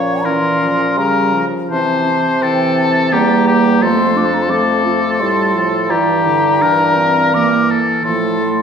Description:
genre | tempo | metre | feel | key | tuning
classical, slow romantic movement for wind quintet | 84 BPM | 3/4 | rubato | F major | A4 = 440 Hz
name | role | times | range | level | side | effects
mellow hollow silver concert flute | melody | 0.0-8.6 s | F5 to D6 | -18 LUFS | left 4 dB | none
bright oboe | second line | 0.0-8.5 s | G4 to Db5 | -18 LUFS | left 2 dB | none
mellow French horn | accompaniment | 0.0-8.6 s | D3 to A3 | -21 LUFS | equal | none
mellow clarinet | accompaniment | 0.0-8.6 s | A3 to F4 | -19 LUFS | right 4 dB | none
warm bassoon | bass | 0.0-8.6 s | E2 to Db3 | -19 LUFS | right 1 dB | none
room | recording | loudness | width
wet recital hall reverb, RT60 1.6 s | heard from further back in the room | -12 LUFS | side -7 dB against mid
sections
0.0-8.6 A section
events
none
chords
0.0 Bbm; 1.7 C7; 3.8 F; 5.9 Edim/G; 8.1 F/A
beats
0.25 0.98 | 1.71 2.43 3.13 | 3.83 4.51 5.21 | 5.91 6.62 7.35 | 8.05

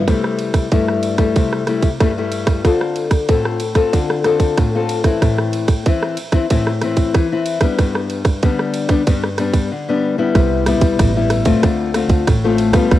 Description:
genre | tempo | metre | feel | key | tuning
samba and choro | 93 BPM | 4/4 | straight | C major | A4 = 441 Hz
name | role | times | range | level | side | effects
nylon-string guitar | accompaniment | 0.0-13.0 s | G2 to A4 | -17 LUFS | left 4 dB | cassette tape
upright bass | bass | 0.0, 10.4-13.0 s | A1 to D3 | -20 LUFS | right 2 dB | none
garage drum kit | drums | 0.1-13.0 s | kick drum, ride cymbal, rim click | -17 LUFS | right 2 dB | cassette tape
room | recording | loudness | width
light reverb, small room ambience | home recording on cassette | -14 LUFS | side -14 dB against mid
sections
0.1-10.4 A section; 10.4-13.0 B section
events
none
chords
0.1 C6; 2.7 Dm7; 5.2 Am; 7.8 G; 10.4 Cmaj7; 11.6 Dm7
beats
| 0.08 0.72 1.36 2.01 | 2.65 3.29 3.94 4.58 | 5.22 5.87 6.51 7.15 | 7.79 8.44 9.08 9.72 | 10.36 11.00 11.64 12.28 | 12.92

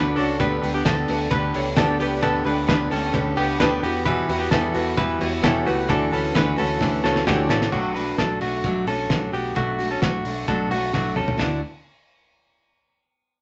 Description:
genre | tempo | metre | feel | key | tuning
jangly indie pop | 131 BPM | 4/4 | straight | D major | A4 = 439 Hz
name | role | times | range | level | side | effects
picked steel-string acoustic guitar | accompaniment | 0.0-11.6 s | E2 to G4 | -28 LUFS | equal | none
warm analog keys | accompaniment | 0.0-7.8 s | D4 to E5 | -28 LUFS | equal | chorus
direct-recorded clean electric guitar | arpeggios | 0.0-11.6 s | A3 to B4 | -27 LUFS | equal | none
vintage muted fingered electric bass | bass | 0.0-11.6 s | A1 to E2 | -32 LUFS | equal | none
cloth-damped thuddy drum kit | drums | 0.2-11.5 s | crash cymbal, hi-hat, kick drum, ride cymbal, snare drum, toms | -28 LUFS | equal | none
room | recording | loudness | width
moderate studio ambience, RT60 0.5 s | nothing above 8.0 kHz | -22 LUFS | mono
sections
0.0-7.7 A section; 7.7-11.4 B section; 11.4-13.2 C section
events
drum fill 6.8-7.7, 10.9-11.4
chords
0.4 Gadd9; 3.8 Emadd9; 5.9 Dadd9; 7.7 Bm7; 11.4 D5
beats
| 0.40 0.86 1.32 1.77 | 2.23 2.69 3.15 3.60 | 4.06 4.52 4.98 5.43 | 5.89 6.35 6.81 7.27 | 7.72 8.18 8.64 9.10 | 9.56 10.02 10.48 10.94 | 11.40

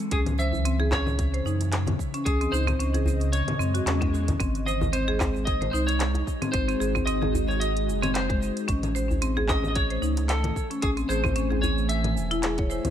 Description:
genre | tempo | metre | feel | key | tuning
organic downtempo | 112 BPM | 4/4 | swing 56% on 16ths | C# harmonic minor | A4 = 441 Hz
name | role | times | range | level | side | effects
ethereal airy pad | sustained chords | 0.0-12.9 s | C#3 to G#5 | -33 LUFS | right 2 dB | ensemble chorus, built-in reverb, sidechain pumping
organic electronic drum kit | drums | 0.0-12.9 s | cabasa, congas, handclaps, hi-hat | -32 LUFS | left 1 dB | none
clean lap steel guitar | melody | 0.1-12.4 s | G#4 to E5 | -31 LUFS | equal | tape echo
marimba with hard mallets | arpeggios | 0.1-12.8 s | G#3 to C#5 | -30 LUFS | left 1 dB | tape echo
warm sub bass | bass | 0.1-12.8 s | E1 to F#2 | -27 LUFS | equal | none
electronic kick drum | drums | 0.1-12.7 s | none | -29 LUFS | equal | none
djembe | percussion | 0.4-12.9 s | none | -34 LUFS | left 1 dB | none
swell | sound effects | 3.6-4.4 s | none | -37 LUFS | left 5 dB | none
room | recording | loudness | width
light reverb, digital ambience | none | -23 LUFS | side -10 dB against mid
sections
0.0-12.9 A section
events
swell 3.6-4.4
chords
0.1 C#madd9; 4.4 G#7; 8.7 Amaj7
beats
| 0.11 0.65 1.19 1.72 | 2.26 2.79 3.33 3.86 | 4.40 4.94 5.47 6.01 | 6.54 7.08 7.61 8.15 | 8.69 9.22 9.76 10.29 | 10.83 11.36 11.90 12.44

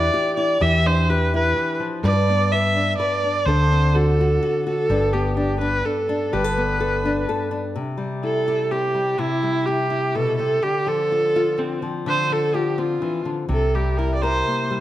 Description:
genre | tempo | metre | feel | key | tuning
acoustic folk duo or small band | 126 BPM | 3/4 | straight | C major | A4 = 440 Hz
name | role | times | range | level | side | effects
rich viola | melody | 0.0-14.7 s | C4 to E5 | -21 LUFS | right 1 dB | none
nylon-string guitar | accompaniment | 0.0-14.8 s | G2 to B4 | -24 LUFS | left 3 dB | none
hollow-body short-scale fingered electric bass | bass | 0.0-7.2, 13.5-14.4 s | G1 to G2 | -21 LUFS | equal | none
room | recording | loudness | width
moderate recital hall reverb, RT60 1.2 s | none | -18 LUFS | side -13 dB against mid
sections
0.0-7.8 A section; 7.8-14.8 B section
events
viola solo 7.8-14.8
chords
0.0 Em7; 2.0 G; 3.5 D7; 4.9 Gadd9; 7.8 C; 10.6 Dm7; 13.5 C7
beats
0.13 | 0.61 1.08 1.56 | 2.04 2.51 2.99 | 3.46 3.94 4.42 | 4.89 5.37 5.85 | 6.32 6.80 7.28 | 7.76 8.23 8.71 | 9.19 9.67 10.15 | 10.63 11.10 11.58 | 12.06 12.54 13.02 | 13.50 13.97 14.45

